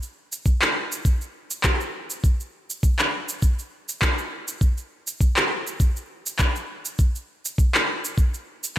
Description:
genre	downtempo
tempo	101 BPM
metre	4/4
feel	swing 55% on 16ths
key	none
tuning	none
part	electronic cabasa and handclaps	drums	0.0-8.7 s	none	-24 LUFS	equal	overdrive
part	electronic kick drum	drums	0.5-8.3 s	none	-19 LUFS	equal	none
room	light reverb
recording	none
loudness	-21 LUFS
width	side -13 dB against mid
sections	0.0-8.8 A section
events	none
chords	none

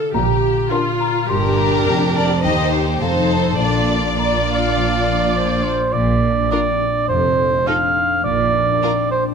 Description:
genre	cinematic, playful, whimsical film cue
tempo	104 BPM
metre	4/4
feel	straight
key	Bb major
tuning	A4 = 440 Hz
part	large celesta	melody	0.0-5.6 s	F5 to F6	-25 LUFS	left 7 dB	none
part	rich studio viola section	accompaniment	0.0-8.9 s	D4 to Eb5	-23 LUFS	right 2 dB	none
part	concert harp	arpeggios	0.0-9.3 s	F2 to F5	-24 LUFS	left 10 dB	none
part	rich chamber cello section	bass	0.1-8.7 s	Eb2 to Bb2	-23 LUFS	right 5 dB	none
part	warm chamber double bass section	bass	0.1-8.7 s	F1 to Eb2	-24 LUFS	right 4 dB	none
part	rich chamber violin section	melody	0.7-8.9 s	A4 to D5	-24 LUFS	equal	none
part	rich studio violin section	second line	0.7-8.9 s	D4 to A4	-23 LUFS	left 4 dB	none
part	warm clarinet	second line	4.2-5.9 s	C5 to F5	-25 LUFS	right 1 dB	none
part	dark cor anglais	second line	5.0-9.2 s	C5 to F5	-18 LUFS	right 4 dB	none
room	moderate scoring stage reverb, RT60 1.6 s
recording	close, detailed microphones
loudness	-15 LUFS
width	side -6 dB against mid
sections	0.0-5.9 A section; 5.9-9.3 B section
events	none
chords	0.2 Bb; 1.3 Gm; 2.4 Cm/Eb; 3.0 F7; 3.6 Bb; 7.1 F7(no3); 8.2 Bb

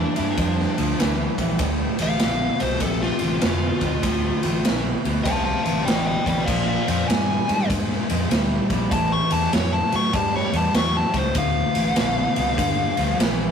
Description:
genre	blues rock power trio and southern rock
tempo	98 BPM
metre	4/4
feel	swing 65% on 8ths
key	D minor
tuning	A4 = 440 Hz
part	biting lead guitar	melody	0.0-13.2 s	D4 to C#6	-24 LUFS	left 3 dB	overdrive
part	overdriven electric guitar	riff	0.0-13.5 s	D2 to Ab3	-25 LUFS	right 1 dB	none
part	vintage muted fingered electric bass	bass	0.0-13.5 s	D1 to A2	-26 LUFS	equal	none
part	raw garage drum kit	drums	0.2-13.4 s	crash cymbal, kick drum, ride cymbal, snare drum	-24 LUFS	right 1 dB	none
room	moderate stone room reverb, RT60 1.0 s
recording	rough rehearsal-room recording, warm saturation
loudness	-19 LUFS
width	side -7 dB against mid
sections	0.0-13.5 A section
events	lead electric guitar solo 0.0-13.5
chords	0.0 G7(no3); 1.6 Dm7; 6.5 Bb7; 8.9 A7; 11.4 Dm7; 12.6 Gm7

